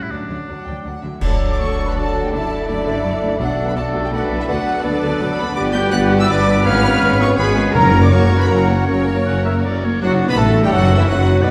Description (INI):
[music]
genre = classical, dramatic, fast romantic movement for symphony orchestra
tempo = 165 BPM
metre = 3/4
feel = straight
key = D major, B minor from 5.6 s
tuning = A4 = 441 Hz
[part]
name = bright oboe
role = second line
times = 0.0-11.5 s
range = D4 to F#5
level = -30 LUFS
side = equal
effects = none
[part]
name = mellow French horn section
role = sustained chords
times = 0.0-11.5 s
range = B2 to D4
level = -28 LUFS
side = equal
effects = none
[part]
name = clear symphonic violin section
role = melody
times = 0.1-11.5 s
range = B3 to G6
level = -30 LUFS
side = equal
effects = none
[part]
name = rich symphonic violin section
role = second line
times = 0.1-11.5 s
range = D4 to B5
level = -32 LUFS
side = equal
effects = none
[part]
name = rich symphonic viola section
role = accompaniment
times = 0.1-11.5 s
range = D3 to F#4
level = -28 LUFS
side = equal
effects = none
[part]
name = rich symphonic cello section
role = bass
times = 0.1-11.5 s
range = E2 to B4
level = -27 LUFS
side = equal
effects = none
[part]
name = rich symphonic double bass section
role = bass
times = 0.1-11.5 s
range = F#1 to F#2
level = -23 LUFS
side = equal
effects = none
[part]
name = mellow large flute ensemble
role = second line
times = 1.2-11.5 s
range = B4 to G6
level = -27 LUFS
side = equal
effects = none
[part]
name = warm clarinet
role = second line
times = 1.2-11.5 s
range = B3 to G5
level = -28 LUFS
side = equal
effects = none
[part]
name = mellow bassoon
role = accompaniment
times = 1.2-11.5 s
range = B2 to B3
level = -28 LUFS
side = equal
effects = none
[part]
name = clear trumpet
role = stabs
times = 1.2-11.5 s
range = B3 to B4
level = -29 LUFS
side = equal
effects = none
[part]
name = dark tuba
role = bass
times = 1.2-11.5 s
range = F#1 to D2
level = -25 LUFS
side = equal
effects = none
[part]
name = clash cymbals, concert bass drum, cymbal swell and tam-tam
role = percussion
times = 1.2-1.9, 7.8-11.4 s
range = none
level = -27 LUFS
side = equal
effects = none
[part]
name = timpani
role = percussion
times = 3.4-3.9, 7.7-8.3 s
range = F#2 to B2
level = -26 LUFS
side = equal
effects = none
[sound]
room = wet scoring stage reverb, RT60 1.6 s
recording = heard from further back in the room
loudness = -16 LUFS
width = mono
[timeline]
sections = 0.0-1.2 A section; 1.2-10.0 B section; 10.0-11.5 C section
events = band accent 1.2-1.6, 10.0-10.4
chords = 0.1 D; 3.4 Bm7; 4.5 Bm/D; 5.6 Gmaj7; 6.7 C#7/G#; 7.7 F#; 10.0 Bm/F#